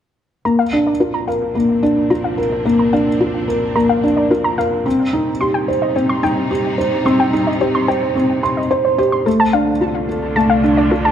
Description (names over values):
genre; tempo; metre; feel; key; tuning
electronica; 109 BPM; 4/4; straight; unclear; A4 = 442 Hz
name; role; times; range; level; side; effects
rich studio string section; sustained chords; 0.5-11.1 s; C2 to F4; -25 LUFS; right 1 dB; none
warbly dusty pluck; arpeggios; 0.5-11.1 s; A4 to C6; -21 LUFS; left 2 dB; chorus, tape echo
felt-muted upright piano; riff; 0.5-11.1 s; A3 to C6; -15 LUFS; equal; tape echo
room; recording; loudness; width
moderate echo chamber reverb, RT60 1.8 s, small room ambience; none; -14 LUFS; side -9 dB against mid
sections
0.5-11.1 A section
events
fade-in on string section 0.5-11.1; filter sweep on synth arpeggio sound 0.5-11.1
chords
0.5 Bb/C; 4.9 Cm; 9.3 Dm/C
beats
| 0.45 1.00 1.55 2.10 | 2.65 3.21 3.76 4.31 | 4.86 5.41 5.96 6.51 | 7.06 7.61 8.16 8.71 | 9.26 9.81 10.36 10.91